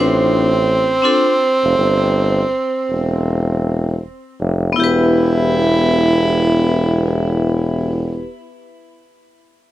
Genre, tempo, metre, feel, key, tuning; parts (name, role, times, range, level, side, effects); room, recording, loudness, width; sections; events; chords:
hip hop, jazz-hop; 80 BPM; 4/4; swing 63% on 16ths; E phrygian; A4 = 440 Hz
breathy tenor saxophone; melody; 0.0-8.2 s; C4 to E4; -17 LUFS; right 2 dB; tape echo
vibraphone with hard mallets; accompaniment; 0.0-8.3 s; B3 to C5; -19 LUFS; left 3 dB
clear tuba; bass; 0.0-8.2 s; E1 to A1; -17 LUFS; equal
light reverb, studio reverb; -14 LUFS; side -14 dB against mid
0.0-4.8 A section; 4.8-7.8 B section
0.0 G9sus4; 4.8 Em